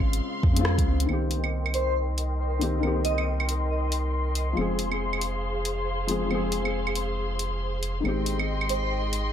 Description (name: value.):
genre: future garage.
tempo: 138 BPM.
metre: 4/4.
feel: swing 61% on 16ths.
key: C phrygian.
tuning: A4 = 440 Hz.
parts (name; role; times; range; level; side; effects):
felt-muted upright piano; accompaniment; 0.0-9.3 s; Db3 to Ab4; -30 LUFS; left 3 dB; sidechain pumping, analog delay.
warm studio string section; sustained chords; 0.0-9.3 s; Ab3 to C6; -32 LUFS; left 1 dB; sidechain pumping, low-pass filter.
soft dub sub bass; bass; 0.0-9.3 s; F1 to F2; -28 LUFS; right 1 dB; tube saturation, sidechain pumping.
electronic kick drum; drums; 0.0-0.9 s; none; -24 LUFS; equal; none.
deep house drum kit; drums; 0.1-9.2 s; claves, hi-hat, rim click; -32 LUFS; right 2 dB; none.
airy dreamy lead; melody; 1.7-3.2, 8.7-8.9 s; C5 to Eb5; -31 LUFS; right 1 dB; chorus, phaser, dub echo.
room: light reverb, digital ambience.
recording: echo-heavy mix.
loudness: -24 LUFS.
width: side -9 dB against mid.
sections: 0.0-1.1 A section; 1.1-9.3 B section.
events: band accent 0.7; filter sweep on string section 1.1-9.3.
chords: 0.0 Dbmaj7; 1.1 Cm7; 4.6 Fm; 8.0 Abmaj7.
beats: 0.22 0.65 | 1.09 1.52 1.96 2.39 | 2.83 3.26 3.70 4.13 | 4.57 5.00 5.43 5.87 | 6.30 6.74 7.17 7.61 | 8.04 8.48 8.91.